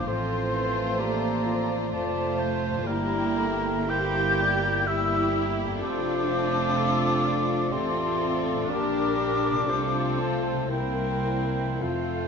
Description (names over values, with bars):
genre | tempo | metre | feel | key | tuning
classical, slow romantic movement for symphony orchestra | 51-65 BPM | 3/4 | rubato | F major | A4 = 440 Hz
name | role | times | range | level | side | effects
dark studio violin section | melody | 0.0-12.3 s | G4 to C5 | -35 LUFS | left 2 dB | none
dark clarinet | second line | 0.0-12.3 s | E4 to Bb4 | -37 LUFS | left 4 dB | none
mellow silver concert flute | second line | 0.0-12.3 s | F5 to G6 | -30 LUFS | left 2 dB | none
warm chamber violin section | second line | 0.0-12.3 s | E4 to G4 | -35 LUFS | equal | none
warm oboe | second line | 0.0-12.3 s | A4 to E5 | -36 LUFS | equal | none
mellow bassoon | accompaniment | 0.0-12.3 s | E3 to Bb3 | -34 LUFS | right 1 dB | none
rich symphonic viola section | accompaniment | 0.0-12.3 s | A3 to D4 | -35 LUFS | right 2 dB | none
dark French horn section | sustained chords | 0.0-12.3 s | F3 to G4 | -34 LUFS | left 4 dB | none
concert harp | arpeggios | 0.0-12.3 s | F2 to Bb4 | -37 LUFS | left 6 dB | none
warm chamber cello section | bass | 0.0-12.3 s | F3 to G4 | -32 LUFS | right 2 dB | none
warm chamber double bass section | bass | 0.0-12.3 s | F1 to F2 | -32 LUFS | right 4 dB | none
room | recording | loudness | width
moderate scoring stage reverb, RT60 1.8 s | nothing above 7.7 kHz | -23 LUFS | side -6 dB against mid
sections
0.0-12.3 A section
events
none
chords
0.1 F/A; 2.9 Edim/G; 5.8 F; 8.7 Gm/Bb; 9.7 F/C; 10.7 C7